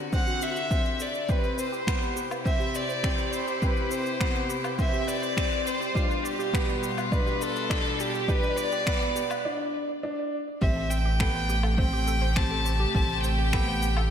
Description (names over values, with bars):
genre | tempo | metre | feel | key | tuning
piano and strings electronica | 103 BPM | 4/4 | straight | A minor | A4 = 439 Hz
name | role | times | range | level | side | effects
rich chamber string section | sustained chords | 0.0-14.1 s | B2 to G4 | -34 LUFS | left 1 dB | none
analog pluck | arpeggios | 0.0-14.0 s | F#4 to F#5 | -38 LUFS | right 2 dB | chorus, sidechain pumping, ping-pong delay
warm violin | melody | 0.1-14.1 s | F4 to A5 | -30 LUFS | equal | ping-pong delay
warm upright piano | riff | 0.1-13.9 s | B3 to D4 | -34 LUFS | left 1 dB | ping-pong delay
electronic kick drum | drums | 0.1-13.6 s | none | -28 LUFS | equal | overdrive
electronic shaker, finger snaps and woodblock | drums | 0.1-14.1 s | none | -36 LUFS | equal | overdrive
warm sub bass | bass | 10.6-14.1 s | A1 | -26 LUFS | equal | tube saturation, sidechain pumping
room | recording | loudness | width
wet lush hall reverb, RT60 1.9 s | dreamy mix soaked in reverb | -24 LUFS | side -8 dB against mid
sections
0.0-10.6 A section; 10.6-14.1 B section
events
build-up 0.0-10.6; filter sweep on synth arpeggio sound 0.0-10.6; break 9.5-10.6; drop 10.6-14.1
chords
0.0 D7; 1.3 Cmaj7; 6.0 G7; 10.6 Am7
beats
0.13 0.71 | 1.30 1.88 2.46 3.04 | 3.63 4.21 4.79 5.38 | 5.96 6.54 7.12 7.71 | 8.29 8.87 9.45 10.04 | 10.62 11.20 11.78 12.37 | 12.95 13.53